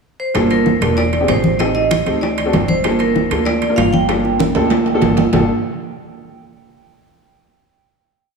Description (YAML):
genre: Afro-Cuban jazz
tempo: 193 BPM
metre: 4/4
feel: straight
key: G minor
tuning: A4 = 440 Hz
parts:
  - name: vibraphone with medium hard mallets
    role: melody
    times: 0.2-5.0 s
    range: Bb4 to G5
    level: -20 LUFS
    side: right 3 dB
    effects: tape echo
  - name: warm baby grand piano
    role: accompaniment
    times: 0.3-5.5 s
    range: Bb3 to Bb4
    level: -18 LUFS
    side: equal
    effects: none
  - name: upright bass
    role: bass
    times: 0.3-5.5 s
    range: E1 to D2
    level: -22 LUFS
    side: equal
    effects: none
  - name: timbales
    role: percussion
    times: 0.3-5.4 s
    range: none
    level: -22 LUFS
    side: right 6 dB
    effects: none
  - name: bongos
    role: percussion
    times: 0.4-5.4 s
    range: none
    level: -24 LUFS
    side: left 5 dB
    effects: none
  - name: congas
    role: percussion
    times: 0.4-5.4 s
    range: none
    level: -23 LUFS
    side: left 1 dB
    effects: none
room: moderate concert hall reverb, RT60 2.2 s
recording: studio ambience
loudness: -13 LUFS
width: side -5 dB against mid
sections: 0.0-0.3 pickup bar; 0.3-5.3 A section; 5.3-6.6 final chord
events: drum fill 4.4-5.3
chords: 0.3 Gm9; 1.0 E7alt; 1.6 Am7b5; 2.2 D7; 2.8 Gm9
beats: 0.04 | 0.35 0.66 0.97 1.29 | 1.60 1.91 2.22 2.53 | 2.84 3.15 3.47 3.78 | 4.09 4.40 4.71 5.02 | 5.33